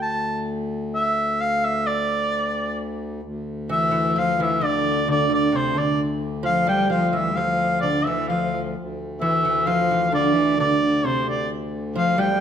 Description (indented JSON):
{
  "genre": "medieval dance",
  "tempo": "131 BPM",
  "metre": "3/4",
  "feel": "straight",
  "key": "D minor",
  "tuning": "A4 = 440 Hz",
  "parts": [
    { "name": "clear shawm", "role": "melody", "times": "0.0-12.4 s", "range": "C5 to A5", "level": "-22 LUFS", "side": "right 1 dB", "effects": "none" },
    { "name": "hand-pumped harmonium", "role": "drone", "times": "0.0-12.4 s", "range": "D2", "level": "-30 LUFS", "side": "left 2 dB", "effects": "none" },
    { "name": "dark viola da gamba", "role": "second line", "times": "3.7-12.4 s", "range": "C3 to G3", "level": "-25 LUFS", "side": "left 5 dB", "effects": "none" },
    { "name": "lute", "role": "second line", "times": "3.7-12.4 s", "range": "C3 to G3", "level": "-26 LUFS", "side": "right 5 dB", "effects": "none" }
  ],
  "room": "wet recital hall reverb, RT60 1.3 s",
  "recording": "none",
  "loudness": "-19 LUFS",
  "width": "side -8 dB against mid",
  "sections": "0.0-3.2 A section; 3.2-12.4 A section",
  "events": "none",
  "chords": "none"
}